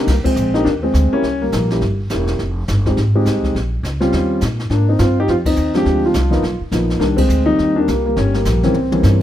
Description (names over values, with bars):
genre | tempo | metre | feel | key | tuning
jazz piano trio | 208 BPM | 4/4 | swing 61% on 8ths | C minor | A4 = 439 Hz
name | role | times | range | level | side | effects
dark baby grand piano | melody | 0.0-9.2 s | Eb3 to G4 | -16 LUFS | left 1 dB | none
upright bass | bass | 0.1-9.2 s | E1 to Bb2 | -18 LUFS | equal | none
jazz brush drum kit | drums | 0.1-9.2 s | brushed snare drum, crash cymbal, hi-hat, kick drum, snare drum, toms | -24 LUFS | left 1 dB | none
room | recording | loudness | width
light reverb | none | -14 LUFS | side -12 dB against mid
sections
0.1-9.2 A section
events
band accent 0.2, 5.4, 7.2; drum fill 8.7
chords
0.1 Cm9; 1.2 C7b9; 2.4 Fm7; 3.6 Bbmadd9; 4.1 Eb13; 4.7 Abmaj7; 5.9 Dm7b5; 6.4 Bmaj7#11; 7.0 Cm9; 8.2 Gdim